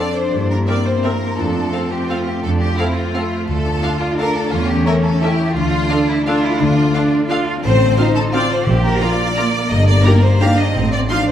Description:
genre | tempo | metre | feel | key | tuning
classical, orchestral ballroom waltz | 173 BPM | 3/4 | uneven beats, rubato | Bb major from 7.6 s | A4 = 440 Hz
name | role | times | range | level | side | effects
rich chamber violin section | melody | 0.0-11.2 s | E5 to C6 | -30 LUFS | left 1 dB | none
rich studio violin section | second line | 0.0-11.3 s | D4 to F5 | -21 LUFS | left 2 dB | none
rich chamber viola section | accompaniment | 0.0-11.2 s | Bb3 to Bb4 | -26 LUFS | right 1 dB | none
dark French horn section | sustained chords | 0.0-11.2 s | F3 to A4 | -24 LUFS | equal | none
concert harp | arpeggios | 0.0-11.3 s | F2 to Bb5 | -22 LUFS | left 5 dB | none
warm chamber cello section | bass | 0.0-11.3 s | A3 to G4 | -22 LUFS | right 3 dB | none
rich chamber double bass section | bass | 0.3-11.0 s | G1 to G2 | -19 LUFS | right 1 dB | none
timpani | percussion | 8.7-9.2 s | Bb2 | -21 LUFS | equal | none
room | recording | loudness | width
wet scoring stage reverb, RT60 1.7 s | none | -14 LUFS | side -10 dB against mid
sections
0.0-11.3 A section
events
none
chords
0.3 C7/G; 1.4 F; 3.5 Dm; 4.5 A7/E; 5.6 Dm; 7.6 F/A; 8.7 Bb; 9.7 Eb/G; 10.7 F7/A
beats
| 0.32 0.67 1.04 | 1.38 1.73 2.09 | 2.43 2.78 3.14 | 3.48 3.83 4.19 | 4.52 4.86 5.22 | 5.56 5.91 6.26 | 6.60 6.94 7.30 | 7.63 7.97 8.33 | 8.67 9.01 9.37 | 9.71 10.05 10.41 | 10.75 11.09

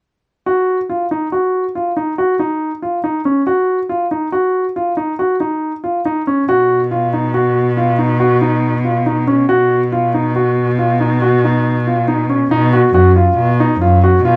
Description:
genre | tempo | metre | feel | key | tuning
contemporary instrumental, contemporary | 139 BPM | 7/4 | straight | unclear | A4 = 440 Hz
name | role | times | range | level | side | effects
clear baby grand piano | arpeggios | 0.5-14.4 s | C#4 to F#4 | -17 LUFS | equal | none
rich cello | bass | 6.5-14.4 s | F#2 to B2 | -17 LUFS | equal | none
room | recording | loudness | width
moderate studio reverb, RT60 0.5 s | dark, warm production | -15 LUFS | mono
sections
0.5-12.5 A section; 12.5-14.4 B section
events
none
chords
0.5 C#add9 (rootless); 6.5 B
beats
| 0.46 0.89 1.32 1.75 2.18 2.61 3.04 | 3.47 3.90 4.33 4.76 5.19 5.62 6.05 | 6.48 6.91 7.34 7.78 8.21 8.64 9.07 | 9.50 9.93 10.36 10.79 11.22 11.65 12.09 | 12.52 12.95 13.38 13.81 14.24

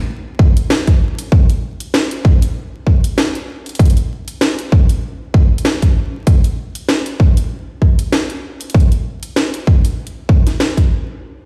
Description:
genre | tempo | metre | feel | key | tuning
glitch hop | 97 BPM | 4/4 | swing 56% on 16ths | none | none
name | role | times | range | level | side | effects
electronic kick drum | drums | 0.4-10.9 s | none | -13 LUFS | equal | none
drum and bass drum kit | drums | 0.6-10.9 s | hi-hat, snare drum | -22 LUFS | equal | overdrive
room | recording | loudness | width
light reverb, digital ambience | played on a big sound system in a bare room, stone room reverb, vinyl crackle | -15 LUFS | mono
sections
0.0-11.2 A section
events
none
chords
none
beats
0.08 0.70 | 1.32 1.94 2.56 3.18 | 3.79 4.41 5.03 5.65 | 6.27 6.89 7.50 8.12 | 8.74 9.36 9.98 10.60

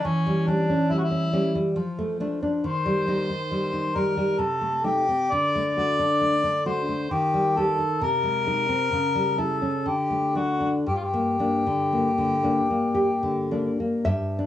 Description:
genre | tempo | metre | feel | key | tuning
romantic duo for harmonica and classical guitar | 51-71 BPM | 3/4 | rubato | G minor | A4 = 439 Hz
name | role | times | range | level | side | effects
warm harmonica | melody | 0.0-13.5 s | C#4 to D5 | -24 LUFS | left 2 dB | none
nylon-string guitar | accompaniment | 0.0-14.5 s | G2 to E5 | -24 LUFS | equal | none
room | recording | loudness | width
light reverb | worn, warbling old tape, cassette tape, warbly pitch drift, small room ambience | -22 LUFS | side -12 dB against mid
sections
0.0-14.1 A section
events
none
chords
0.0 C#dim/E; 1.8 Dm/F; 2.6 Eb; 4.4 Adim/C; 5.3 D; 7.1 Eb; 8.0 Ab/C; 8.9 C#dim7; 9.9 D; 10.9 Gm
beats
| 0.04 0.91 1.76 | 2.63 3.51 4.37 | 5.31 6.21 7.11 | 8.01 8.93 9.87 | 10.87 11.93 12.96 | 14.06

